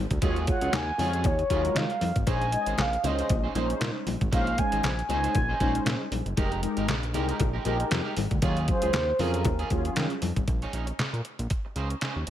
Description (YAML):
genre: early-eighties boogie funk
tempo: 117 BPM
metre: 4/4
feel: swing 56% on 16ths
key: Bb minor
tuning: A4 = 440 Hz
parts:
  - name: fat analog bass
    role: bass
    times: 0.0-12.3 s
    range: F1 to Eb3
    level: -30 LUFS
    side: equal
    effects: none
  - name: electric guitar at the edge of break-up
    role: riff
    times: 0.1-12.3 s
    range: Gb3 to Db5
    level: -36 LUFS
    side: right 5 dB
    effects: lush chorus
  - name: detuned 8-bit digital drum machine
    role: drums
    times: 0.1-12.3 s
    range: handclaps, hi-hat, kick drum, snare drum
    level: -29 LUFS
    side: equal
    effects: none
  - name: mellow synth brass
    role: accompaniment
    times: 0.2-10.1 s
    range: Gb3 to Eb5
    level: -32 LUFS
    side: left 1 dB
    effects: chorus, phaser
  - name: congas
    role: percussion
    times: 0.2-10.5 s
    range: none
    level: -36 LUFS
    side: left 8 dB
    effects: none
  - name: mellow horn-like synth lead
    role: melody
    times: 0.5-9.7 s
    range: Bb4 to Ab5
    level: -29 LUFS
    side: equal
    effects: chorus, analog delay
room: moderate plate reverb, RT60 1.4 s, digital ambience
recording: dreamy mix soaked in reverb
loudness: -24 LUFS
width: side -11 dB against mid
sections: 0.0-10.5 A section; 10.5-12.3 B section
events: none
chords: 0.2 Ebm11; 2.3 Bbm11; 6.4 Fm11; 8.4 Ebm11; 10.5 Bbm11